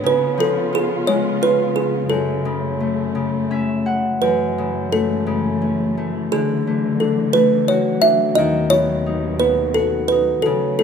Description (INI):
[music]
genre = children's music, lullaby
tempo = 58 BPM (dotted quarters)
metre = 6/8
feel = rubato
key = F# minor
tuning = A4 = 442 Hz
[part]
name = kalimba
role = melody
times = 0.0-10.8 s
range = G#4 to E5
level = -18 LUFS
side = right 3 dB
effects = none
[part]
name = Celtic harp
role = accompaniment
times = 0.0-10.8 s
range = F#2 to F#5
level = -21 LUFS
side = left 5 dB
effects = none
[part]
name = dark symphonic string section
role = sustained chords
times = 0.0-10.8 s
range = D#2 to E#4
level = -26 LUFS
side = right 1 dB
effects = none
[sound]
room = moderate recital hall reverb, RT60 1.9 s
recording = minimal, uncompressed stereo recording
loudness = -16 LUFS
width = side -7 dB against mid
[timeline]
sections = 0.0-4.2 A section; 4.2-10.8 A section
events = harp fill 3.2-4.2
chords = 0.0 C#7; 2.1 F#m; 6.3 Dadd9; 8.4 B/D#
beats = | 0.05 1.07 | 2.10 3.15 | 4.22 5.28 | 6.33 7.35 | 8.37 9.40 | 10.44